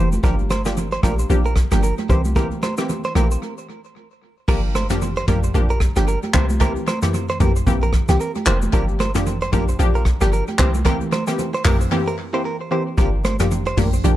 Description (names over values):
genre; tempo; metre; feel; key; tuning
afrobeats; 113 BPM; 4/4; swing 58% on 16ths; G dorian; A4 = 438 Hz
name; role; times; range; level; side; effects
analog pluck; accompaniment; 0.0-14.2 s; E3 to G4; -24 LUFS; left 1 dB; chorus
direct-recorded clean electric guitar; riff; 0.0-13.9 s; G4 to C5; -26 LUFS; right 3 dB; tape echo
deep log drum bass; bass; 0.0-14.2 s; F1 to C2; -20 LUFS; equal; none
soft brush drum kit; drums; 0.1-14.2 s; crash cymbal, handclaps, hi-hat, kick drum, rim click, shaker, toms; -22 LUFS; equal; tape echo
congas; percussion; 0.1-14.2 s; none; -28 LUFS; right 2 dB; tape echo
room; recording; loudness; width
small room ambience; echo-heavy mix; -17 LUFS; side -14 dB against mid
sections
0.0-4.5 A section; 4.5-13.0 B section; 13.0-14.2 C section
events
break 3.4-4.5, 11.9-13.0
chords
0.2 Gm7; 2.1 C7; 4.5 Gm7; 6.3 C7; 8.7 Gm7; 10.6 C7; 13.0 Gm7